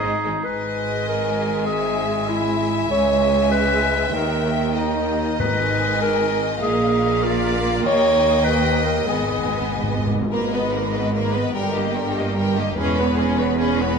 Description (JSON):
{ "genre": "cinematic", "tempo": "98 BPM (dotted quarters)", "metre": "6/8", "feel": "straight", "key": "G# harmonic minor", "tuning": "A4 = 441 Hz", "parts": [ { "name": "warm symphonic violin section", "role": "melody", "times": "0.0-14.0 s", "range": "B4 to G#5", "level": "-29 LUFS", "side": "left 5 dB", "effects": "none" }, { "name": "clear symphonic violin section", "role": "second line", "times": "0.0-14.0 s", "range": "G#3 to E5", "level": "-27 LUFS", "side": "left 2 dB", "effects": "none" }, { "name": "warm clarinet", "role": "second line", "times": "0.0-9.7 s", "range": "D#4 to C#5", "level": "-21 LUFS", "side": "left 1 dB", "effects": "none" }, { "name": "rich symphonic viola section", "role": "accompaniment", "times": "0.0-14.0 s", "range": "D#3 to C#4", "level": "-26 LUFS", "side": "right 2 dB", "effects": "none" }, { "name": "rich symphonic cello section", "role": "bass", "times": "0.0-14.0 s", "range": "C#2 to A#2", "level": "-26 LUFS", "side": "right 3 dB", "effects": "none" }, { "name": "rich symphonic double bass section", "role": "bass", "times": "0.0-14.0 s", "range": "E1 to D#2", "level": "-27 LUFS", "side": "right 2 dB", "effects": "none" }, { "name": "timpani", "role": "percussion", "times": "5.4-6.0, 9.1-10.3 s", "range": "G#2", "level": "-28 LUFS", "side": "equal", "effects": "none" } ], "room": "moderate scoring stage reverb, RT60 1.8 s", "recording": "none", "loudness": "-18 LUFS", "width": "side -6 dB against mid", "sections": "0.5-10.3 A section; 10.3-14.0 B section", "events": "timpani fill 9.1-10.3; build-up 10.3-14.0", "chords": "0.5 G#m; 2.9 C#m; 4.1 D#; 5.4 G#m; 6.6 A#7; 7.8 D#; 9.1 G#m; 10.3 G#madd9; 11.5 D#/G; 12.8 E6" }